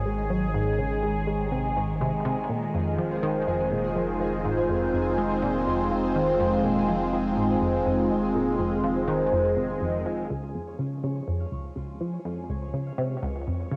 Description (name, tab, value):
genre	ambient, sequencer-driven space music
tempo	123 BPM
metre	4/4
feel	straight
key	F minor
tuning	A4 = 439 Hz
part	phased analog pad	sustained chords	0.0-13.8 s	Eb3 to Db5	-29 LUFS	equal	phaser, chorus, cassette tape
part	Celtic harp	arpeggios	0.0-13.8 s	Eb4 to Db6	-35 LUFS	equal	cassette tape, delay
part	tight sequenced synth	riff	0.0-13.8 s	Db2 to Ab3	-32 LUFS	equal	chorus, cassette tape, delay
part	warm sub bass	bass	0.0-10.3 s	F1 to Ab1	-38 LUFS	equal	none
part	pulsing gated texture	texture	0.0-10.3 s	Ab4 to Ab5	-42 LUFS	equal	chorus, built-in reverb, cassette tape
room	wet studio reverb, RT60 0.5 s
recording	home recording on cassette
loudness	-26 LUFS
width	mono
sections	0.0-10.3 A section; 10.3-13.8 B section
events	fade-in on synth texture 0.0-10.3; fade-in on analog synth pad 10.3-13.8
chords	0.0 Absus4; 2.5 Fm7; 10.3 Db